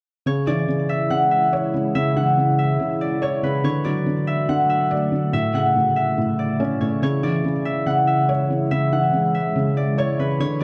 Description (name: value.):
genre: hip hop.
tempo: 142 BPM.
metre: 4/4.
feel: half-time.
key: C# phrygian.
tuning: A4 = 440 Hz.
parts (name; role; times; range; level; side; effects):
concert harp; melody; 0.3-10.6 s; B4 to F#5; -24 LUFS; equal; delay.
felt-muted upright piano; accompaniment; 0.3-10.6 s; A2 to D5; -24 LUFS; equal; none.
glassy FM pad; sustained chords; 0.8-10.6 s; C#3 to F#4; -28 LUFS; equal; ensemble chorus, built-in reverb, phaser.
room: moderate lush hall reverb, RT60 2.6 s.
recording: none.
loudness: -21 LUFS.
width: mono.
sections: 0.3-10.6 A section.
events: none.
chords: 0.3 C#m; 3.6 D; 5.3 A; 7.0 C#m.